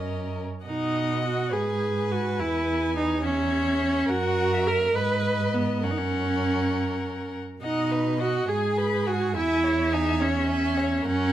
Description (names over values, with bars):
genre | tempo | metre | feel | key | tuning
quick classical-period movement for string quartet | 69 BPM (dotted quarters) | 6/8 | rubato | unclear | A4 = 440 Hz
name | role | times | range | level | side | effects
rich violin | melody | 0.0-11.3 s | D#5 to B5 | -34 LUFS | left 9 dB | none
rich violin | second line | 0.0-11.3 s | G#4 to E5 | -31 LUFS | left 3 dB | none
clear viola | accompaniment | 0.0-11.3 s | B3 to B4 | -25 LUFS | right 2 dB | none
rich cello | bass | 0.0-11.3 s | E2 to B2 | -30 LUFS | right 4 dB | none
room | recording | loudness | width
moderate recital hall reverb, RT60 1.5 s | close, detailed microphones | -23 LUFS | side -12 dB against mid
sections
0.7-11.3 A section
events
none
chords
0.0 F#; 0.7 B; 1.5 G#m; 2.4 C#m/E; 4.1 F#; 5.0 G#m; 5.8 F#; 7.6 B; 8.5 G#m; 9.4 C#m/E